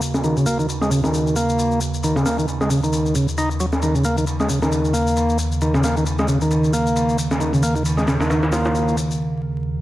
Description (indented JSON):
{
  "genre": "breakbeat, breaks",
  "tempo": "134 BPM",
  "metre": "4/4",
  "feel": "swing 57% on 16ths",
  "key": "Eb minor",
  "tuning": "A4 = 440 Hz",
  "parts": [
    { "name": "warbly tape-like pad", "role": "sustained chords", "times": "0.0-9.8 s", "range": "Eb2 to Gb4", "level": "-22 LUFS", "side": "right 1 dB", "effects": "chorus, built-in reverb" },
    { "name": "breakbeat sampler-style drum kit", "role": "drums", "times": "0.0-9.1 s", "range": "ride cymbal, snare drum", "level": "-26 LUFS", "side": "equal", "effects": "low-pass filter on cymbals, low-pass filter on kick, low-pass filter on snare, low-pass filter on room" },
    { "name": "shaker", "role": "drums", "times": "0.0-9.2 s", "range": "none", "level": "-31 LUFS", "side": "left 4 dB", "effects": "none" },
    { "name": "percussive tonewheel organ", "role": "riff", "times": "0.2-9.0 s", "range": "Db3 to Eb4", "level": "-20 LUFS", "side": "equal", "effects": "overdrive, low-pass filter, digital delay" }
  ],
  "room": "moderate plate reverb, RT60 1.4 s",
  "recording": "vinyl crackle",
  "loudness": "-17 LUFS",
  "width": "side -15 dB against mid",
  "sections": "0.0-9.8 A section",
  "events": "filter sweep on ambient pad 0.0-9.8; break 9.2-9.8",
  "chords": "0.0 Ebm7"
}